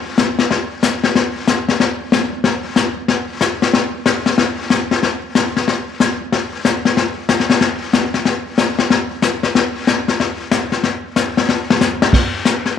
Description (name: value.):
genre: country.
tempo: 186 BPM.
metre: 4/4.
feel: swing 64% on 8ths.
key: none.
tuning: none.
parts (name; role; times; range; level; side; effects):
vintage brush drum kit; drums; 0.2-12.8 s; brushed snare drum, crash cymbal, hi-hat, kick drum, snare drum; -14 LUFS; left 4 dB; none.
room: wet plate reverb, RT60 1.0 s.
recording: 1960s-style stereo.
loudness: -14 LUFS.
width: side -8 dB against mid.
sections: 0.0-12.1 A section.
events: drum fill 11.5-12.1.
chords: none.